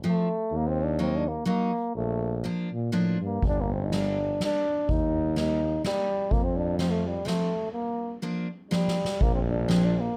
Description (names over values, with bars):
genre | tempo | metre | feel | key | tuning
alpine folk, alpine dance band | 124 BPM | 3/4 | swing 55% on 8ths, rubato | Bb major | A4 = 443 Hz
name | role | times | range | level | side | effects
picked steel-string acoustic guitar | accompaniment | 0.0-9.9 s | F3 to Eb4 | -30 LUFS | equal | none
clear euphonium | melody | 0.1-10.2 s | G3 to Eb4 | -31 LUFS | equal | none
clear tuba | bass | 0.5-10.2 s | G1 to Bb2 | -31 LUFS | equal | none
soft-mallet drum kit | drums | 3.4-9.8 s | kick drum, ride cymbal, snare drum | -34 LUFS | equal | none
room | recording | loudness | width
little or no reverb | close, detailed microphones | -27 LUFS | mono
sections
0.0-9.2 A section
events
break 7.7-9.2; drum fill 8.7-9.2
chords
0.0 F; 0.5 Ebm; 2.0 Bb; 3.4 Gm; 4.9 Eb; 6.3 F; 7.7 Bb